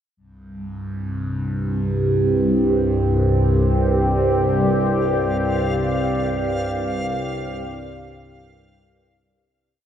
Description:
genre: dark ambient drone.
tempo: free time.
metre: none.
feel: none.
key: unclear.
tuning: A4 = 440 Hz.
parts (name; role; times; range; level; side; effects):
deep dark ambient pad; sustained chords; 2.1-9.5 s; C4 to D5; -24 LUFS; equal; chorus, built-in reverb, shimmer reverb.
overtone-sweeping drone; drone; 0.6-9.6 s; C2 to G2; -20 LUFS; equal; chorus, built-in reverb, phaser.
backwards swelling texture; texture; 5.2-9.5 s; F5; -31 LUFS; equal; built-in reverb.
room: wet spring reverb, RT60 2.4 s.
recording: none.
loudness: -18 LUFS.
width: side -9 dB against mid.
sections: 0.2-9.5 A section.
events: fade-out 4.8-9.5.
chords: 0.2 Csus2.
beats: free time.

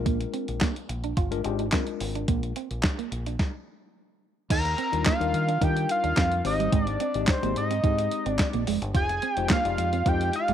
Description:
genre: early-eighties boogie funk.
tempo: 108 BPM.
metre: 4/4.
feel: straight.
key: Eb major.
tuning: A4 = 440 Hz.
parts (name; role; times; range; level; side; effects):
mellow tine electric piano; accompaniment; 0.0-10.5 s; G3 to Eb5; -32 LUFS; left 13 dB; medium stereo tremolo.
deep dub fingered electric bass; bass; 0.0-10.5 s; F1 to Eb3; -30 LUFS; equal; none.
semi-hollow electric guitar; riff; 0.1-10.5 s; G3 to F4; -33 LUFS; right 16 dB; analog chorus.
crisp 8-bit digital drum machine; drums; 0.1-10.5 s; crash cymbal, handclaps, hi-hat, kick drum, snare drum; -26 LUFS; equal; none.
fat analog lead; melody; 4.5-10.5 s; C5 to Bb5; -27 LUFS; equal; chorus.
room: light reverb, digital ambience.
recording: 1960s-style stereo with parts hard left and right.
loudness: -23 LUFS.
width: side -10 dB against mid.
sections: 0.0-4.5 A section; 4.5-10.5 B section.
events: stop 3.4-4.5.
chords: 0.0 Bb7; 4.5 Ebmaj9; 6.4 Abmaj7; 8.9 Fm9.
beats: | 0.06 0.61 1.17 1.73 | 2.28 2.84 3.39 3.95 | 4.50 5.06 5.62 6.17 | 6.73 7.28 7.84 8.39 | 8.95 9.50 10.06.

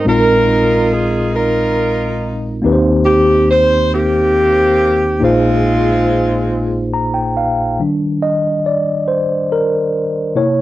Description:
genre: gospel.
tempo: 46 BPM (dotted quarters).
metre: 6/8.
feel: straight.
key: Eb major.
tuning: A4 = 437 Hz.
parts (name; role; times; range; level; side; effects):
warm saxophone section; melody; 0.0-6.9 s; Ab3 to C5; -14 LUFS; right 1 dB; cassette tape.
mellow tine electric piano; accompaniment; 0.0-10.6 s; Bb1 to Bb5; -14 LUFS; equal; medium stereo tremolo, cassette tape.
room: light reverb.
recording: home recording on cassette.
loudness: -12 LUFS.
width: side -15 dB against mid.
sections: 0.0-7.8 A section; 7.8-10.6 B section.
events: tine electric piano fill 6.5-7.8; tine electric piano solo 7.8-10.6.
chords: 0.1 Bb9sus4; 2.6 Eb6; 5.2 Bb9sus4; 7.8 Ebmaj7.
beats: | 0.06 1.35 | 2.64 3.93 | 5.22 6.50 | 7.79 9.08 | 10.37.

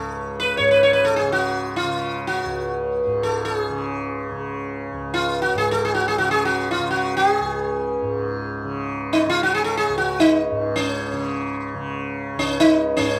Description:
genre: indian classical, Hindustani.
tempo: free time.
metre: none.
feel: none.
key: unclear.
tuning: A4 = 440 Hz.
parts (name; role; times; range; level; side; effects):
sitar; melody; 0.0-13.2 s; C#4 to C#5; -22 LUFS; equal; none.
tanpura; drone; 0.0-13.2 s; C#2 to C#3; -28 LUFS; equal; none.
room: moderate large studio reverb, RT60 0.9 s.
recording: band playing live in one room.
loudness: -22 LUFS.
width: mono.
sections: 0.0-13.2 A section.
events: none.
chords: none.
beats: free time.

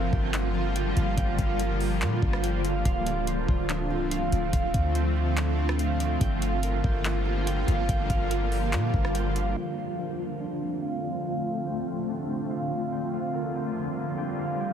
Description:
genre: hip hop, atmospheric cloud-rap.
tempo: 143 BPM.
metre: 4/4.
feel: half-time.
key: D minor.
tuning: A4 = 440 Hz.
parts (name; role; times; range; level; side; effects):
granular cloud pad; sustained chords; 0.0-14.7 s; D3 to F4; -29 LUFS; equal; built-in reverb, sidechain pumping, low-pass filter.
concert harp; arpeggios; 0.0-14.7 s; Bb3 to G5; -34 LUFS; right 3 dB; low-pass filter, digital delay.
clean 808-style bass; bass; 0.0-9.5 s; C1 to Bb2; -28 LUFS; equal; none.
smooth R&B drum kit; drums; 0.1-9.5 s; handclaps, hi-hat, kick drum, rim click; -29 LUFS; equal; none.
room: little or no reverb.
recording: heavily compressed radio sound, multiband compression.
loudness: -25 LUFS.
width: side -8 dB against mid.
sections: 0.0-9.6 A section; 9.6-14.7 B section.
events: none.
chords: 0.0 Gm7; 2.9 Dm7; 6.2 Gm7; 9.6 Dm7; 12.9 Gm7.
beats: 0.34 0.76 | 1.18 1.60 2.02 2.44 | 2.85 3.27 3.69 4.11 | 4.53 4.95 5.37 5.79 | 6.21 6.63 7.05 7.47 | 7.89 8.31 8.73 9.15 | 9.57 9.99 10.41 10.83 | 11.25 11.67 12.09 12.51 | 12.92 13.34 13.76 14.18 | 14.60.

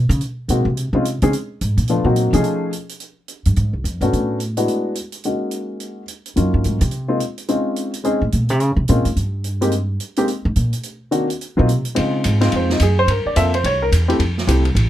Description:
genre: jazz piano trio.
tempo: 214 BPM.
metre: 4/4.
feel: swing 61% on 8ths.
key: Db major, Bb minor from 3.0 s.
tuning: A4 = 440 Hz.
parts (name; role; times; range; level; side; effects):
upright bass; bass; 0.0-14.9 s; A1 to Db3; -18 LUFS; equal; none.
open jazz drum kit; drums; 0.1-14.8 s; hi-hat, ride cymbal, snare drum; -29 LUFS; right 2 dB; none.
warm baby grand piano; melody; 0.5-14.6 s; Eb3 to Fb5; -19 LUFS; left 1 dB; none.
room: little or no reverb.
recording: close, detailed microphones.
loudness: -17 LUFS.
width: side -13 dB against mid.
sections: 0.0-3.0 A section; 3.0-12.0 A section; 12.0-14.9 A section.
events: upright bass solo 0.0-12.0; grand piano solo 12.0-14.9.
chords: 0.2 Ab9; 0.8 Dbmaj7(no3) (rootless); 1.9 Cm7b5; 2.4 F7alt; 3.0 N.C.; 4.1 Bm7; 4.7 E9; 5.2 Gb6; 6.4 Ebm9; 6.9 N.C.; 7.5 Dbmaj9; 8.6 Bbm9; 9.2 N.C.; 10.8 Cm7b5; 11.4 Bbsus2; 12.0 Dbmaj9; 13.1 Gm11; 13.6 C; 14.2 Fmaj9.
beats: 0.20 0.48 | 0.76 1.04 1.32 1.60 | 1.88 2.16 2.44 2.72 | 3.00 3.28 3.56 3.84 | 4.12 4.40 4.68 4.96 | 5.24 5.52 5.80 6.08 | 6.36 6.64 6.92 7.20 | 7.48 7.76 8.04 8.32 | 8.60 8.88 9.16 9.44 | 9.72 10.00 10.28 10.56 | 10.84 11.12 11.40 11.68 | 11.96 12.24 12.52 12.80 | 13.08 13.36 13.64 13.92 | 14.20 14.48 14.76.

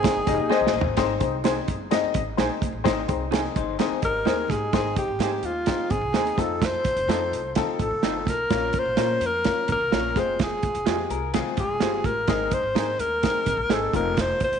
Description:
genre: uptempo 1960s-style soul.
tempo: 127 BPM.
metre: 4/4.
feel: straight.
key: Ab major.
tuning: A4 = 440 Hz.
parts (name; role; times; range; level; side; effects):
breathy alto saxophone; melody; 0.0-0.7, 4.1-14.6 s; F4 to C5; -25 LUFS; equal; none.
dark horn section; second line; 0.0-0.7 s; Eb3 to Ab4; -34 LUFS; right 9 dB; none.
warm upright piano; accompaniment; 0.0-14.5 s; Ab3 to Eb5; -28 LUFS; left 11 dB; none.
warm soul drum kit; drums; 0.0-14.6 s; hi-hat, kick drum, snare drum, toms; -26 LUFS; right 5 dB; none.
congas; percussion; 0.0-14.5 s; none; -39 LUFS; right 9 dB; none.
upright bass; bass; 0.1-14.6 s; F1 to Bb2; -34 LUFS; left 1 dB; none.
electric guitar through a small old amp; riff; 0.3-4.7, 11.1-12.2 s; G3 to C5; -30 LUFS; left 12 dB; wide subtle chorus.
electric guitar through a small old amp; stabs; 0.5-13.8 s; Eb4 to Db5; -32 LUFS; right 11 dB; none.
room: moderate echo chamber reverb, RT60 1.7 s, small room ambience.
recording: 1960s-style stereo with parts hard left and right, nothing above 10.4 kHz.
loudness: -21 LUFS.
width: side -7 dB against mid.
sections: 1.0-4.7 A section; 4.7-14.6 B section.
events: drum fill 0.5-1.0.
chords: 0.0 Ab; 6.4 F7; 8.5 Bbm; 10.2 Fm; 12.3 Ab; 13.9 F7.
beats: 0.03 0.50 | 0.97 1.44 1.91 2.38 | 2.85 3.32 3.79 4.26 | 4.73 5.21 5.68 6.15 | 6.62 7.09 7.57 8.04 | 8.51 8.98 9.45 9.93 | 10.40 10.87 11.34 11.81 | 12.29 12.76 13.23 13.70 | 14.18.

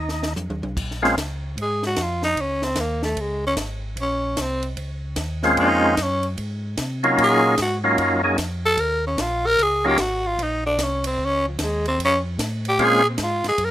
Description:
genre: soul jazz organ trio.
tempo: 150 BPM.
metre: 4/4.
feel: swing 64% on 8ths.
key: Bb minor.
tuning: A4 = 441 Hz.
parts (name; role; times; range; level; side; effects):
percussive tonewheel organ; melody; 0.0-1.2, 5.4-10.0, 12.8-13.0 s; Gb3 to Ab4; -18 LUFS; equal; overdrive, fast rotary speaker.
mellow tonewheel organ; bass; 0.0-13.7 s; Ab1 to C3; -28 LUFS; equal; slow rotary speaker.
compact cocktail drum kit; drums; 0.1-13.7 s; crash cymbal, hi-hat, kick drum, ride cymbal, snare drum, toms; -30 LUFS; equal; none.
growling tenor saxophone; melody; 1.6-13.7 s; F3 to Bb4; -21 LUFS; equal; none.
room: small room ambience.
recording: rough home demo mix.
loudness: -19 LUFS.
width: side -12 dB against mid.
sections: 0.8-13.7 A section.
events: drum fill 0.0-0.8; tenor saxophone solo 0.8-13.7.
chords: 0.0 F5; 0.8 Bbm7; 7.2 Ebm7; 10.4 Bbm7.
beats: 0.37 | 0.77 1.17 1.57 1.97 | 2.37 2.77 3.17 3.58 | 3.98 4.38 4.78 5.18 | 5.58 5.98 6.38 6.78 | 7.18 7.58 7.99 8.39 | 8.79 9.19 9.59 9.99 | 10.39 10.79 11.19 11.60 | 12.00 12.40 12.80 13.20 | 13.60.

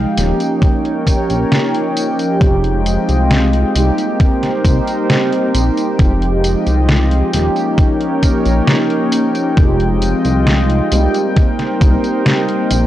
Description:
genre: vaporwave.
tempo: 67 BPM.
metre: 4/4.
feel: straight.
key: F minor.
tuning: A4 = 440 Hz.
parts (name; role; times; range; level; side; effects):
mellow synth brass; accompaniment; 0.0-12.9 s; F3 to G4; -16 LUFS; equal; analog chorus, cassette tape, tape echo.
warbly tape-like pad; sustained chords; 0.0-12.9 s; Ab3 to G5; -20 LUFS; left 1 dB; chorus, built-in reverb.
chorused synth bass; bass; 0.0-12.9 s; Eb1 to C2; -15 LUFS; equal; none.
detuned 8-bit digital drum machine; drums; 0.2-12.9 s; hi-hat, snare drum, tambourine; -19 LUFS; equal; studio reverb.
electronic kick drum; drums; 0.6-12.0 s; none; -12 LUFS; equal; overdrive, studio reverb.
room: light reverb, digital ambience.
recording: dry, gritty hardware recording, transformer saturation, cassette tape.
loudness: -12 LUFS.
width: side -13 dB against mid.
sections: 0.0-12.9 A section.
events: none.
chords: 0.2 Eb7; 2.4 Fm9; 3.8 Cm7; 6.0 Fm9; 7.3 Eb7; 9.6 Fm9; 10.9 Cm7.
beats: 0.62 1.51 | 2.41 3.31 4.20 5.10 | 5.99 6.89 7.78 8.68 | 9.57 10.47 11.37 12.26.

